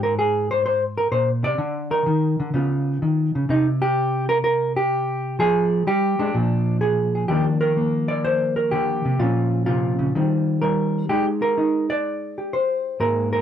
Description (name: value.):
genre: solo jazz.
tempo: 126 BPM.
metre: 4/4.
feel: swing 68% on 8ths.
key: Eb major.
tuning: A4 = 443 Hz.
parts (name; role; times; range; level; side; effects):
hollow-body jazz guitar; solo; 0.0-13.4 s; Ab2 to D5; -19 LUFS; equal; none.
room: light reverb.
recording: close, detailed microphones.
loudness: -19 LUFS.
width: side -9 dB against mid.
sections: 0.0-7.3 A section; 7.3-13.4 B section.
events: none.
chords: 0.0 Abadd9; 1.6 Bbadd11/D; 2.5 Db7; 3.5 N.C.; 5.4 Fmadd9; 6.3 Bb7; 7.3 Ebmaj9; 9.2 Bbmadd9; 10.1 Eb69; 11.1 Abmaj9.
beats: 0.16 0.64 1.11 | 1.58 2.06 2.53 3.01 | 3.48 3.96 4.43 4.91 | 5.38 5.86 6.33 6.80 | 7.28 7.75 8.23 8.71 | 9.18 9.66 10.13 10.61 | 11.08 11.56 12.03 12.51 | 12.98.